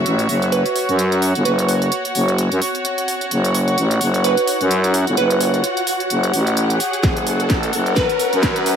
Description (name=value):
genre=bass house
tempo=129 BPM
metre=4/4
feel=swing 57% on 16ths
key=F# minor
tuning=A4 = 443 Hz
part: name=growling FM bass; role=bass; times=0.0-8.8 s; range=F#1 to F#2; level=-18 LUFS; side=equal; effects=overdrive, sidechain pumping, high-pass filter
part: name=riser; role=sound effects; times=2.0-8.8 s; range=none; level=-26 LUFS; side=right 1 dB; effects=none
part: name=warm studio string section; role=texture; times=0.0-8.8 s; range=F#4 to F#5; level=-21 LUFS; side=left 1 dB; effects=sidechain pumping
part: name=house drum kit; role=drums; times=0.1-8.8 s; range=hi-hat, snare drum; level=-24 LUFS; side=right 1 dB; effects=none
part: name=glassy wavetable pluck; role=melody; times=0.5-8.2 s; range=B4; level=-22 LUFS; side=right 3 dB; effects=chorus, tape echo
part: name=electronic kick drum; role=drums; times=7.0-8.5 s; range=none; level=-19 LUFS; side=equal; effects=none
room=moderate plate reverb, RT60 2.4 s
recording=dreamy mix soaked in reverb, high-pass filter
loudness=-15 LUFS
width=side -7 dB against mid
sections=0.0-8.8 A section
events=build-up 0.0-8.8; riser 2.0-8.8; drum fill 7.0-8.8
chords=0.0 F#m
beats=0.06 0.52 0.99 | 1.45 1.92 2.38 2.85 | 3.31 3.78 4.24 4.71 | 5.17 5.64 6.10 6.57 | 7.03 7.50 7.96 8.43